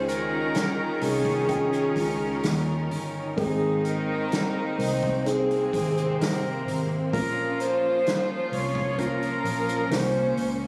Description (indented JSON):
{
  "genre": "pop ballad",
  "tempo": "64 BPM",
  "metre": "4/4",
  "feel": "straight",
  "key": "Ab major",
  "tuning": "A4 = 440 Hz",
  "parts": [
    { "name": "breathy alto saxophone", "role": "melody", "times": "0.0-10.6 s", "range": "Ab4 to Db5", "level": "-30 LUFS", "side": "equal", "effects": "none" },
    { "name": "rich chamber cello section", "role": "second line", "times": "0.0-10.7 s", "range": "Bb2 to F4", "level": "-34 LUFS", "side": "equal", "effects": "tape echo" },
    { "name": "felt-muted upright piano", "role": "accompaniment", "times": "0.0-10.7 s", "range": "Ab2 to G5", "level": "-35 LUFS", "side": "equal", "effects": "none" },
    { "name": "dark studio string section", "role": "sustained chords", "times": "0.0-10.7 s", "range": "Eb3 to Bb4", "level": "-37 LUFS", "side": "equal", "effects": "none" },
    { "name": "vintage muted fingered electric bass", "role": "bass", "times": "0.0-10.7 s", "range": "G1 to Eb2", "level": "-34 LUFS", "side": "equal", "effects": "none" },
    { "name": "soft-mallet drum kit", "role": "drums", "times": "0.1-10.6 s", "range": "hi-hat, kick drum, snare drum", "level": "-34 LUFS", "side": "equal", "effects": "none" }
  ],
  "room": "light reverb, small room reverb",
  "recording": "recorded on a phone in the room, studio reverb",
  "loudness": "-26 LUFS",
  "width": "mono",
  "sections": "0.0-10.7 A section",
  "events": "none",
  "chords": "0.0 Dbadd9; 3.4 Abadd9; 7.1 Bbm",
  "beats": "0.55 1.49 2.43 | 3.38 4.32 5.26 6.20 | 7.13 8.06 8.98 9.91"
}